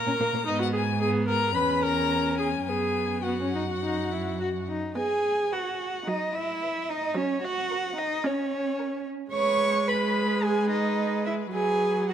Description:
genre	quick classical-period movement for string quartet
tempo	109 BPM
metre	4/4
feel	straight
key	B major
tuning	A4 = 440 Hz
part	rich violin	melody	0.0-12.1 s	A#4 to B5	-32 LUFS	left 10 dB	none
part	rich viola	accompaniment	0.0-12.1 s	F#3 to B4	-29 LUFS	right 2 dB	none
part	dark violin	second line	0.1-12.1 s	A#3 to C#6	-30 LUFS	left 3 dB	none
part	rich cello	bass	0.1-12.1 s	E2 to C#5	-28 LUFS	right 4 dB	none
room	light reverb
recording	close, detailed microphones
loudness	-24 LUFS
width	side -9 dB against mid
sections	0.0-5.0 A section; 5.0-12.1 B section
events	none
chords	0.5 G#m; 1.6 C#m/E; 2.7 B5/F#; 3.8 D#m/F#; 5.0 B; 7.2 F#; 9.3 G#m; 11.5 B5/F#

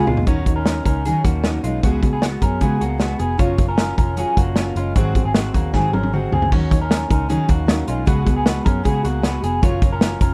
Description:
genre	jangly indie pop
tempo	154 BPM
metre	4/4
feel	straight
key	Eb minor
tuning	A4 = 440 Hz
part	fingerpicked steel-string acoustic guitar	accompaniment	0.0-10.3 s	Ab2 to Bb4	-26 LUFS	equal	none
part	electric guitar through a small old amp	arpeggios	0.0-10.3 s	Ab3 to Db5	-27 LUFS	equal	subtle chorus, delay
part	vintage muted picked electric bass	bass	0.1-10.3 s	F1 to Db3	-25 LUFS	equal	none
part	vintage drum kit	drums	0.1-10.3 s	hi-hat, kick drum, snare drum, splash cymbal, toms	-21 LUFS	equal	none
room	light reverb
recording	rough home demo mix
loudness	-19 LUFS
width	mono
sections	0.3-10.3 A section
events	drum fill 0.0, 5.7-6.5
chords	0.3 Ebm7; 1.8 Db7sus4; 3.4 Gbmaj7; 5.0 Ab7; 6.5 Ebm7; 8.1 Db7sus4; 9.6 Gbmaj7

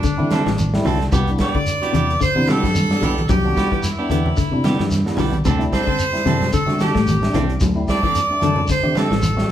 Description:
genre	afrobeat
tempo	111 BPM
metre	4/4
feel	swing 56% on 16ths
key	D mixolydian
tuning	A4 = 436 Hz
part	brilliant horn section	melody	0.0-9.5 s	D4 to D5	-22 LUFS	right 2 dB	none
part	clean electric guitar	arpeggios	0.0-9.3 s	C3 to A3	-24 LUFS	left 6 dB	none
part	warm soul drum kit	drums	0.0-9.5 s	hi-hat, kick drum, snare drum	-23 LUFS	equal	none
part	shekere	percussion	0.0-9.4 s	none	-28 LUFS	equal	none
part	percussive tonewheel organ	accompaniment	0.2-9.5 s	G3 to G4	-27 LUFS	equal	slow rotary speaker, chorus vibrato
part	fingered electric bass	bass	0.2-9.4 s	A1 to D3	-22 LUFS	equal	none
part	congas	percussion	0.2-9.4 s	none	-25 LUFS	right 1 dB	none
part	clean electric guitar	stabs	0.3-9.1 s	G3 to A4	-27 LUFS	right 4 dB	none
room	moderate large studio reverb, RT60 1.3 s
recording	band playing live in one room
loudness	-16 LUFS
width	side -11 dB against mid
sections	0.0-9.5 A section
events	none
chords	0.0 D7sus4; 1.1 Cmaj7; 5.5 D7sus4

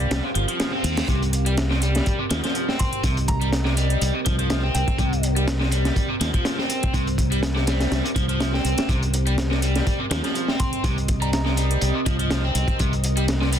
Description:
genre	breakbeat, breaks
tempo	123 BPM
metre	4/4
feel	swing 54% on 16ths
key	C minor pentatonic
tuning	A4 = 440 Hz
part	deep dark ambient pad	sustained chords	0.0-13.6 s	C4 to F5	-30 LUFS	right 2 dB	chorus, built-in reverb, vintage 12-bit sampler grit, sidechain pumping
part	overdriven electric guitar	riff	0.0-13.6 s	C3 to C4	-27 LUFS	equal	low-pass filter, ping-pong delay
part	fingered electric bass	bass	0.0-13.6 s	G1 to Eb2	-23 LUFS	equal	none
part	electronic hi-hat	drums	0.0-13.6 s	none	-32 LUFS	right 1 dB	overdrive
part	crunchy breakbeat drum kit	drums	0.1-13.6 s	hi-hat, kick drum, snare drum	-25 LUFS	equal	none
part	reverse cymbal	sound effects	0.7-1.1 s	none	-37 LUFS	right 2 dB	none
part	soft synth bell	melody	2.8-5.2, 10.6-11.4 s	G5 to C6	-32 LUFS	equal	chorus, old record sound, ping-pong delay
room	small room ambience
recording	dense, heavily limited modern master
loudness	-20 LUFS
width	side -9 dB against mid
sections	0.0-13.6 A section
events	reverse cymbal 0.7-1.1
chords	0.0 Cm7

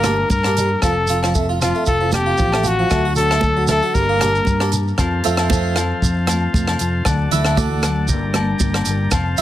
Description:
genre	highlife guitar band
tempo	116 BPM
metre	4/4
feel	swing 54% on 16ths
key	F major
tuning	A4 = 440 Hz
part	clear trumpet	melody	0.0-4.7 s	F4 to Bb4	-19 LUFS	left 2 dB	plate reverb, tape echo
part	mellow electric guitar	accompaniment	0.0-9.4 s	F2 to Bb4	-26 LUFS	left 4 dB	none
part	fingered electric bass	bass	0.0-9.4 s	F1 to G2	-21 LUFS	equal	none
part	compact cocktail drum kit	drums	0.0-9.4 s	hi-hat, kick drum, rim click	-22 LUFS	equal	none
part	agogo bells	percussion	0.0-9.3 s	none	-28 LUFS	left 5 dB	none
part	congas	percussion	0.0-9.4 s	none	-26 LUFS	right 5 dB	none
part	shekere	percussion	0.0-9.4 s	none	-26 LUFS	right 3 dB	none
part	harpsichord	arpeggios	0.1-9.4 s	F3 to E5	-23 LUFS	right 5 dB	plate reverb, tape echo
part	combo organ	sustained chords	5.0-9.4 s	C5 to Bb5	-27 LUFS	left 1 dB	plate reverb
room	light reverb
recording	none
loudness	-15 LUFS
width	side -13 dB against mid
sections	0.0-5.0 A section; 5.0-9.4 B section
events	harpsichord solo 5.0-9.4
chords	0.0 Gm; 0.8 F; 2.9 D; 3.9 Gm; 5.0 F; 7.1 D; 8.1 Gm

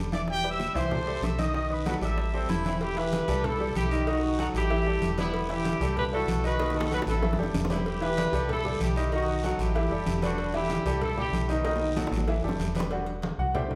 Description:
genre	latin, salsa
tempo	190 BPM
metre	4/4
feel	straight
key	E minor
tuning	A4 = 440 Hz
part	bright concert grand piano	accompaniment	0.0-13.8 s	D#3 to G5	-33 LUFS	equal	none
part	metallic FM bass	bass	0.0-13.8 s	E1 to C2	-33 LUFS	equal	none
part	bright trumpet section	melody	0.1-2.6 s	G4 to E6	-34 LUFS	equal	none
part	bongos and cowbell	percussion	0.1-13.7 s	none	-39 LUFS	equal	none
part	congas	percussion	0.1-13.8 s	none	-36 LUFS	equal	none
part	guiro	percussion	0.1-12.9 s	none	-47 LUFS	equal	none
part	bright baritone saxophone	second line	2.3-2.8 s	C4 to E4	-38 LUFS	equal	none
part	warm horn section	melody	2.7-12.1 s	B3 to B4	-33 LUFS	equal	none
room	wet recital hall reverb, RT60 1.3 s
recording	recorded in a church or concert hall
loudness	-28 LUFS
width	mono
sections	0.0-2.8 A section; 2.8-12.9 B section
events	drum fill 6.6-7.9, 11.6-12.9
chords	0.3 Em; 0.9 C6; 1.5 B7; 2.2 Am7; 3.4 C6; 4.1 B7; 4.7 A5; 5.3 Em; 6.0 C6; 6.6 B7; 7.2 Am7; 7.9 Em; 8.5 C6; 9.1 B7; 9.8 A5; 10.4 Em7; 11.0 C6; 11.6 B7; 12.3 A5; 12.9 Em7

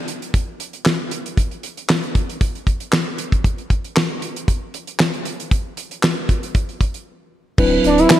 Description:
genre	early-eighties boogie funk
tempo	116 BPM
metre	4/4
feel	straight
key	unclear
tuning	A4 = 440 Hz
part	damped 70s drum kit	drums	0.1-8.2 s	crash cymbal, handclaps, hi-hat, kick drum, snare drum	-18 LUFS	equal	none
part	mellow tine electric piano	accompaniment	7.6-8.1 s	F#3 to B4	-15 LUFS	left 1 dB	medium stereo tremolo
part	sub bass with octave	bass	7.6-8.0 s	D1	-23 LUFS	equal	none
part	expressive synth lead	melody	7.9-8.2 s	D4 to E4	-14 LUFS	right 2 dB	chorus
room	moderate lush hall reverb, RT60 2.3 s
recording	big arena sound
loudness	-18 LUFS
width	side -13 dB against mid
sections	0.0-7.6 A section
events	break 7.1-7.6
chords	0.0 N.C.; 7.6 D13

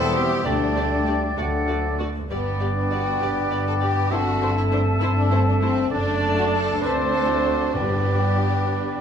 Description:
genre	quick classical-period movement for symphony orchestra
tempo	66 BPM (dotted quarters)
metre	6/8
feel	straight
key	G major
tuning	A4 = 440 Hz
part	clear clarinet	second line	0.0-9.0 s	A3 to D4	-31 LUFS	left 3 dB	none
part	clear oboe	second line	0.0-9.0 s	D5 to E5	-30 LUFS	equal	none
part	hollow small flute group	second line	0.0-9.0 s	F#5 to A5	-29 LUFS	left 3 dB	none
part	rich chamber violin section	second line	0.0-9.0 s	B3 to B4	-29 LUFS	left 3 dB	none
part	mellow French horn section	sustained chords	0.0-9.0 s	F#3 to E4	-30 LUFS	left 4 dB	none
part	dark trumpet	stabs	0.0-9.0 s	A4 to C5	-28 LUFS	right 3 dB	none
part	rich chamber double bass section	bass	0.0-9.0 s	E1 to D2	-28 LUFS	right 1 dB	none
part	rich studio cello section	bass	0.0-9.0 s	D2 to G2	-27 LUFS	right 2 dB	none
part	warm chamber violin section	melody	0.1-9.0 s	B4 to D5	-34 LUFS	left 2 dB	none
part	rich symphonic viola section	accompaniment	0.2-9.0 s	G3 to G4	-32 LUFS	right 2 dB	none
part	timpani	percussion	7.7-8.6 s	G2	-30 LUFS	left 1 dB	none
room	wet recital hall reverb, RT60 1.6 s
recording	minimal, uncompressed stereo recording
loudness	-19 LUFS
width	side -8 dB against mid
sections	0.0-9.0 A section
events	none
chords	0.5 Dsus4; 1.4 D; 2.3 G; 4.1 Am7/G; 5.9 D/F#; 6.8 D5; 7.7 G

